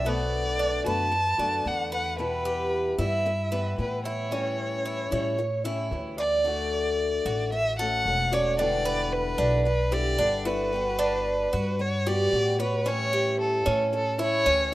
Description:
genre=latin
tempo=112 BPM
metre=4/4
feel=straight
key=D major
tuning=A4 = 441 Hz
part: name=warm violin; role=melody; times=0.0-14.7 s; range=A4 to A5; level=-27 LUFS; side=equal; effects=none
part: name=picked old ladder-braced acoustic guitar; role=accompaniment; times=0.0-14.7 s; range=B2 to F#4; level=-32 LUFS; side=left 4 dB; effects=none
part: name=Cuban tres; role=arpeggios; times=0.0-14.7 s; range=B3 to D5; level=-29 LUFS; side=right 2 dB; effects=none
part: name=upright bass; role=bass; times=0.0-14.7 s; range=E1 to A2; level=-31 LUFS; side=equal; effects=none
room=light reverb, small room ambience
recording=rough home demo mix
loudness=-24 LUFS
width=side -16 dB against mid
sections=0.0-6.5 A section; 6.5-14.7 B section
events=none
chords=0.1 Bm7; 2.2 Em; 4.3 A7; 6.5 Dmaj7; 8.6 Em7; 10.7 Gmaj7; 12.9 A7

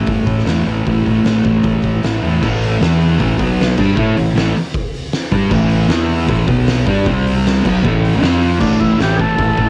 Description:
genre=garage rock duo or trio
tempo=155 BPM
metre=4/4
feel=straight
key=A minor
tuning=A4 = 440 Hz
part: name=fuzz guitar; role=riff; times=0.0-9.7 s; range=A2 to A4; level=-17 LUFS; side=equal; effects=distortion, cassette tape
part: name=growling picked electric bass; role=bass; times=0.0-9.7 s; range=G1 to A2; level=-21 LUFS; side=equal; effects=overdrive
part: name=oversized low-tuned drum kit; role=drums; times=0.1-9.7 s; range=crash cymbal, hi-hat, kick drum, snare drum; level=-23 LUFS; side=equal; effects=cassette tape
part: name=overdriven combo organ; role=melody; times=8.6-9.7 s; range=D4 to A4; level=-21 LUFS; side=equal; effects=cassette tape
room=light reverb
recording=home recording on cassette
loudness=-15 LUFS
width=mono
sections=0.0-2.4 A section; 2.4-8.6 B section; 8.6-9.7 C section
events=transistor combo organ solo 8.6-9.7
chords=0.0 A5; 2.8 E5; 3.2 A5; 3.4 B5; 3.8 A5; 5.9 E5; 6.3 A5; 6.5 B5; 6.9 G5; 7.1 C5; 7.6 A5; 8.2 F5; 8.6 A5

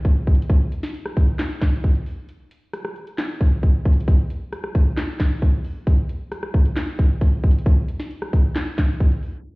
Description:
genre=hip hop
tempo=134 BPM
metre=4/4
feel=half-time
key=none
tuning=none
part: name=trap drum kit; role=drums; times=0.0-9.6 s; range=handclaps, hi-hat, kick drum, rim click, snare drum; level=-17 LUFS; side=equal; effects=none
room=light reverb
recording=heard muffled through a wall, stone room reverb, EQ, low-pass filter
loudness=-18 LUFS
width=side -26 dB against mid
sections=0.0-9.5 A section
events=break 2.3-3.2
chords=none

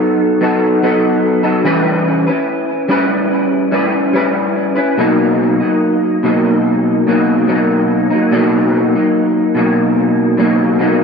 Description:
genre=indie pop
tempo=72 BPM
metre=4/4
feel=straight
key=B major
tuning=A4 = 441 Hz
part: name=electric guitar through a small old amp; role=solo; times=0.0-11.0 s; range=B2 to B4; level=-11 LUFS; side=equal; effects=ensemble chorus, vibrato effect, tape echo
room=moderate plate reverb, RT60 3.1 s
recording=dark, warm production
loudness=-11 LUFS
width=side -5 dB against mid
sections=0.0-11.0 A section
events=none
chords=0.0 B7; 1.7 Em6; 5.0 Bmaj7

